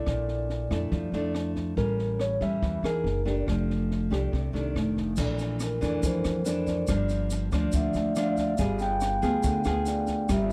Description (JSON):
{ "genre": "bossa nova", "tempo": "141 BPM", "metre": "4/4", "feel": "straight", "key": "unclear", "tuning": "A4 = 441 Hz", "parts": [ { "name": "mellow tine electric piano", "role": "melody", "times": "0.0-3.4 s", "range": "Bb4 to E5", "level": "-34 LUFS", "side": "equal", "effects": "none" }, { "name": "nylon-string guitar", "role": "accompaniment", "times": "0.0-10.5 s", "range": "F2 to Bb4", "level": "-32 LUFS", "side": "equal", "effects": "none" }, { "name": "upright bass", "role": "bass", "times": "0.1-10.5 s", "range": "F1 to F2", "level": "-32 LUFS", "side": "equal", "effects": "none" }, { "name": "compact cocktail drum kit", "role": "drums", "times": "0.1-10.5 s", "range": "crash cymbal, kick drum, rim click, snare drum", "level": "-36 LUFS", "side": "equal", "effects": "none" }, { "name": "tube shaker", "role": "percussion", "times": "5.2-10.5 s", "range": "none", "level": "-46 LUFS", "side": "equal", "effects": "none" }, { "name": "vibraphone with medium mallets", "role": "accompaniment", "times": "5.6-10.5 s", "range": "Bb4 to G5", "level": "-33 LUFS", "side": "equal", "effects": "none" } ], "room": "little or no reverb", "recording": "dry, close 1970s-style studio recording", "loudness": "-28 LUFS", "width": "mono", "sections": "0.0-5.2 A section; 5.2-10.5 B section", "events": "vibraphone solo 5.2-10.5", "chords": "0.1 Bbmaj7#11; 1.8 A7b9; 3.0 Gb69; 3.5 F69; 4.8 F6; 5.2 Bbmaj9#11; 6.9 Gm7; 8.6 G7b9", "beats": "| 0.06 0.49 0.92 1.34 | 1.77 2.19 2.62 3.05 | 3.47 3.90 4.32 4.75 | 5.18 5.60 6.03 6.46 | 6.88 7.31 7.73 8.16 | 8.59 9.01 9.44 9.86 | 10.29" }